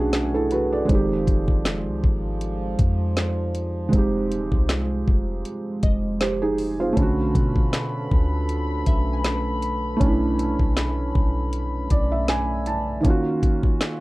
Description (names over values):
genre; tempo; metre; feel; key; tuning
contemporary R&B; 79 BPM; 4/4; swing 54% on 16ths; unclear; A4 = 440 Hz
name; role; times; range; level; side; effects
felt-muted upright piano; accompaniment; 0.0-14.0 s; D3 to A5; -24 LUFS; right 2 dB; none
warm brass ensemble; sustained chords; 0.0-13.0 s; F3 to B5; -32 LUFS; left 1 dB; none
soft 808-style bass; bass; 0.0-13.0 s; Eb1 to B2; -26 LUFS; equal; none
glassy wavetable pluck; texture; 0.0-11.6 s; B4 to Ab5; -39 LUFS; left 3 dB; chorus, analog delay
smooth R&B drum kit; drums; 0.1-14.0 s; hi-hat, kick drum, snare drum; -21 LUFS; equal; none
room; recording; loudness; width
little or no reverb; dark, warm production; -20 LUFS; side -20 dB against mid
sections
0.0-14.0 A section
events
felt piano fill 11.5-13.0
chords
0.0 Bm7; 0.9 Fm7; 7.0 Bm7; 13.0 Ebm7